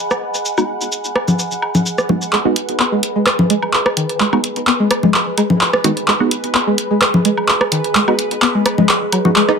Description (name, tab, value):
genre	minimal techno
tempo	128 BPM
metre	4/4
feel	swing 53% on 16ths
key	G# minor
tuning	A4 = 439 Hz
part	bubbling stepped-filter texture	texture	0.0-9.6 s	B4 to F#5	-26 LUFS	right 1 dB	chorus, built-in reverb
part	warbly tape-like pad	texture	0.0-9.6 s	G#4 to B5	-25 LUFS	right 1 dB	chorus, built-in reverb
part	punchy analog drum machine	drums	0.1-9.5 s	handclaps, hi-hat, shaker	-17 LUFS	equal	low-pass filter on perc, low-pass filter on snare, low-pass filter on hats, low-pass filter on room
part	electronic rim click, woodblock and congas	percussion	0.1-9.6 s	none	-17 LUFS	left 1 dB	tape echo
part	filtered dub chord stab	stabs	0.6-9.3 s	G#3 to F#4	-20 LUFS	right 3 dB	phaser, vintage 12-bit sampler grit, tape echo
part	string-like resonator pluck	riff	2.3-9.5 s	D#3 to D#4	-18 LUFS	left 1 dB	chorus, phaser, dub echo
room	moderate plate reverb, RT60 1.0 s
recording	none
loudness	-13 LUFS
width	side -6 dB against mid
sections	0.0-2.3 A section; 2.3-9.6 B section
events	build-up 2.3-9.6; drum fill 2.3-9.6; filter sweep on synth pluck 2.3-9.6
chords	0.0 G#m7; 2.3 G#m